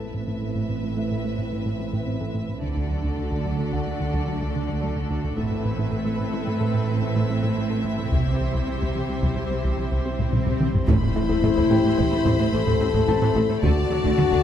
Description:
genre	cinematic, hybrid orchestral and electronic film score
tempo	109 BPM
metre	5/4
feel	straight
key	A dorian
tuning	A4 = 440 Hz
part	warm symphonic violin section	second line	0.0-14.4 s	A4 to E5	-35 LUFS	left 4 dB	none
part	warm symphonic viola section	accompaniment	0.0-14.4 s	E3 to A4	-34 LUFS	equal	low-pass filter
part	lush unison pad	sustained chords	0.0-14.4 s	E3 to D5	-33 LUFS	equal	chorus, low-pass filter
part	thumb-piano-like synth pluck	arpeggios	0.0-14.4 s	C3 to A4	-34 LUFS	left 3 dB	none
part	plucky analog bass	riff	0.0-14.4 s	C2 to A3	-28 LUFS	right 2 dB	low-pass filter
part	warm symphonic cello section	bass	0.0-14.4 s	A2 to D3	-30 LUFS	right 3 dB	none
part	warm symphonic double bass section	bass	0.0-14.2 s	A1 to D2	-29 LUFS	right 3 dB	none
part	dark grand piano	texture	0.0-14.4 s	G4 to B5	-38 LUFS	left 2 dB	tape echo
part	taiko ensemble	drums	5.4-14.4 s	none	-26 LUFS	left 1 dB	none
part	swell and impact	sound effects	9.7-13.6 s	none	-32 LUFS	left 1 dB	none
part	warm symphonic violin section	melody	10.9-14.4 s	A5 to B5	-35 LUFS	left 5 dB	low-pass filter
part	mellow French horn section	sustained chords	10.9-14.4 s	E4 to A4	-22 LUFS	left 6 dB	low-pass filter
part	mellow tuba	bass	10.9-14.2 s	A1 to D2	-32 LUFS	right 3 dB	none
room	moderate scoring stage reverb, RT60 1.9 s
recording	none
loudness	-21 LUFS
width	side -10 dB against mid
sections	0.0-10.9 A section; 10.9-14.4 B section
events	filter sweep 0.0-10.9; swell 9.7-10.9; drum fill 10.2-10.9; impact 10.9-13.6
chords	0.0 Amadd9; 2.6 D; 5.4 Amadd9; 8.1 C; 10.9 Amadd9; 13.6 D

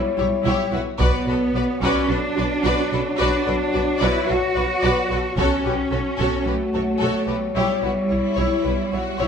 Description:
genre	cinematic, epic orchestral film score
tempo	110 BPM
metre	4/4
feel	straight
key	B minor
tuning	A4 = 441 Hz
part	clear French horn section	sustained chords	0.0-9.3 s	E4 to C#5	-26 LUFS	left 5 dB	none
part	rich symphonic cello section	bass	0.0-9.3 s	G3 to F#4	-24 LUFS	right 2 dB	none
part	warm symphonic violin section	melody	0.2-9.3 s	B4 to D5	-29 LUFS	left 4 dB	none
part	rich studio violin section	second line	0.2-9.3 s	E4 to B4	-28 LUFS	left 3 dB	none
part	rich symphonic viola section	accompaniment	0.2-9.3 s	E4 to F#4	-28 LUFS	right 2 dB	none
part	rich symphonic double bass section	bass	0.2-9.3 s	B1	-26 LUFS	right 2 dB	none
part	taiko ensemble	drums	1.0-2.1, 5.4-6.4 s	none	-26 LUFS	equal	none
room	moderate recital hall reverb, RT60 1.3 s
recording	none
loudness	-18 LUFS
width	side -7 dB against mid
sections	0.0-9.3 A section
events	none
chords	0.0 C#dim/B; 1.0 Bmadd9; 5.4 F#m/B; 7.5 C#dim/B

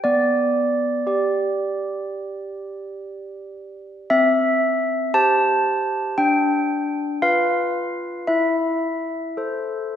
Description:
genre	classical, tune for handbells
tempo	59 BPM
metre	4/4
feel	straight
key	unclear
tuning	A4 = 440 Hz
part	handbells	solo	0.0-10.0 s	B3 to A5	-19 LUFS	equal	none
room	wet concert hall reverb, RT60 2.2 s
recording	heard from further back in the room, nothing above 10.4 kHz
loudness	-18 LUFS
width	side -9 dB against mid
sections	0.0-10.0 A section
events	none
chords	0.0 G/B; 4.1 C; 6.2 Bdim/D; 8.3 Am/E

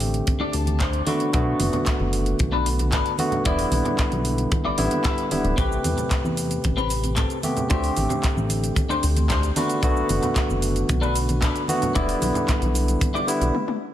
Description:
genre	nu-disco, nu disco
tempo	113 BPM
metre	4/4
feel	straight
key	unclear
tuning	A4 = 440 Hz
part	barky tine electric piano	accompaniment	0.0-13.5 s	C3 to B4	-25 LUFS	equal	overdrive, low-pass filter, ping-pong delay
part	chorused synth bass	bass	0.0-13.5 s	D1 to E2	-24 LUFS	equal	none
part	pop drum kit	drums	0.0-13.8 s	handclaps, hi-hat, shaker, toms	-31 LUFS	equal	none
part	kick drum	drums	0.3-13.1 s	none	-24 LUFS	equal	none
part	congas	percussion	0.3-13.5 s	none	-32 LUFS	right 3 dB	none
part	clean electric guitar	riff	0.4-13.4 s	C4 to A5	-28 LUFS	left 3 dB	wide subtle chorus, ping-pong delay
room	moderate plate reverb, RT60 1.5 s, studio reverb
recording	dreamy mix soaked in reverb, lossy compression artefacts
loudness	-20 LUFS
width	side -12 dB against mid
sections	0.0-13.9 A section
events	clean electric guitar fill 0.3-1.3; drum fill 13.5-13.9; stop 13.5-13.9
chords	0.0 D7sus4; 1.1 Bm7; 3.5 Em7; 5.6 Am9; 7.7 D7sus4; 9.6 Bm7; 12.0 Em7

